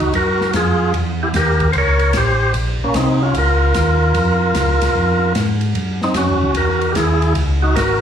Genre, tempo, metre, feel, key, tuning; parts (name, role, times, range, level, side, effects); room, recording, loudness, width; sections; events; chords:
soul jazz organ trio; 150 BPM; 4/4; swing 66% on 8ths; Bb minor; A4 = 445 Hz
percussive tonewheel organ; melody; 0.0-8.0 s; Bb3 to C#5; -17 LUFS; equal; slow rotary speaker, plate reverb, slapback echo
mellow tonewheel organ; bass; 0.0-8.0 s; Ab1 to Ab2; -18 LUFS; equal; overdrive, chorus vibrato, slow rotary speaker
open jazz drum kit; drums; 0.0-7.9 s; hi-hat, kick drum, ride cymbal, snare drum; -24 LUFS; right 1 dB
light reverb; live gig heard through the venue's PA, club reverb; -14 LUFS; side -8 dB against mid
0.0-8.0 A section
0.0 Ebm9; 0.9 Edim7; 2.5 Bbm9; 5.8 Gb7